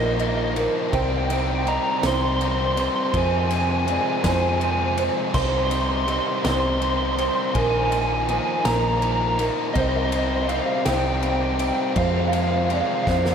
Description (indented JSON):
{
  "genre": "post-rock",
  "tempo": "54 BPM (dotted quarters)",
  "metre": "6/8",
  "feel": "straight",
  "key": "C minor",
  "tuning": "A4 = 440 Hz",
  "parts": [
    { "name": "lightly driven lead guitar", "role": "melody", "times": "0.0-13.3 s", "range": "Eb5 to C6", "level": "-25 LUFS", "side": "right 1 dB", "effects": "analog chorus, diffuse ambient delay" },
    { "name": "felt-muted upright piano", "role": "arpeggios", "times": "0.0-13.3 s", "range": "Bb4 to Eb5", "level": "-28 LUFS", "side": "right 3 dB", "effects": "ensemble chorus, diffuse ambient delay" },
    { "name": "thick fuzz guitar", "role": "riff", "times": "0.0-13.3 s", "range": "F2 to Eb4", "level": "-28 LUFS", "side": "right 8 dB", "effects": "distortion" },
    { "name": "tight distorted guitar", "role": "riff", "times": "0.0-13.3 s", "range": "F2 to Eb4", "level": "-27 LUFS", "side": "left 10 dB", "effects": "distortion" },
    { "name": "hollow-body short-scale fingered electric bass", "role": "bass", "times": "0.0-13.3 s", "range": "Bb1 to F2", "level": "-26 LUFS", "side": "left 1 dB", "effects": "none" },
    { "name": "loose indie drum kit", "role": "drums", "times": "0.2-13.3 s", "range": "crash cymbal, kick drum, ride cymbal, snare drum", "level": "-30 LUFS", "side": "left 1 dB", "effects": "none" }
  ],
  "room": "wet plate reverb, RT60 2.1 s",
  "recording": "dreamy mix soaked in reverb",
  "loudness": "-20 LUFS",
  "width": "side -7 dB against mid",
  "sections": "0.0-13.3 A section",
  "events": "drum fill 13.1",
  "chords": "0.0 Bbsus4; 0.9 Cm; 3.1 Fm; 5.3 Cm; 7.6 Bbsus4; 9.8 Cm; 12.0 Fm"
}